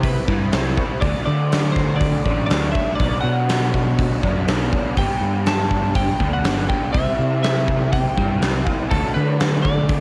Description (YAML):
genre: rock, shoegaze and dream pop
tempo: 122 BPM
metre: 4/4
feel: straight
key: G major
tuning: A4 = 442 Hz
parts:
  - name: twelve-string electric guitar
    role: melody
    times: 0.0-10.0 s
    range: A4 to A5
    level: -28 LUFS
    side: equal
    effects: cassette tape
  - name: raw garage guitar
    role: riff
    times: 0.0-10.0 s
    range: G2 to E4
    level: -27 LUFS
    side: equal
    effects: overdrive, ensemble chorus
  - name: fuzz fingered electric bass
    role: bass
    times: 0.0-10.0 s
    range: G1 to D3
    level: -24 LUFS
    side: equal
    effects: overdrive, transformer saturation
  - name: gated 80s drum kit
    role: drums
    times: 0.0-10.0 s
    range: hi-hat, kick drum, snare drum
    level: -24 LUFS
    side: equal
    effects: none
room: little or no reverb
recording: home recording on cassette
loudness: -20 LUFS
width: mono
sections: 0.0-10.0 A section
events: none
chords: 0.0 Cmaj7; 1.0 D; 3.0 Bm; 5.0 Gadd9; 6.9 C; 8.9 D